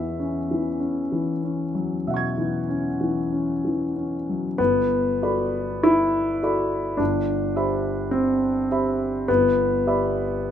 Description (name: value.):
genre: classical, impressionist solo piano.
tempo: 46-53 BPM.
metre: 4/4.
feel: rubato.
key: E major, G major from 4.6 s.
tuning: A4 = 440 Hz.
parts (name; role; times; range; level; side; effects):
warm grand piano; solo; 0.0-10.5 s; G1 to G#6; -21 LUFS; left 1 dB; none.
room: moderate recital hall reverb, RT60 1.6 s.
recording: close, detailed microphones.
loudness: -21 LUFS.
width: side -9 dB against mid.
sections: 0.0-4.6 A section; 4.6-10.5 B section.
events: none.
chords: 0.0 E69; 4.6 Gmaj9; 7.0 Cmaj7/G; 9.3 Em7/G.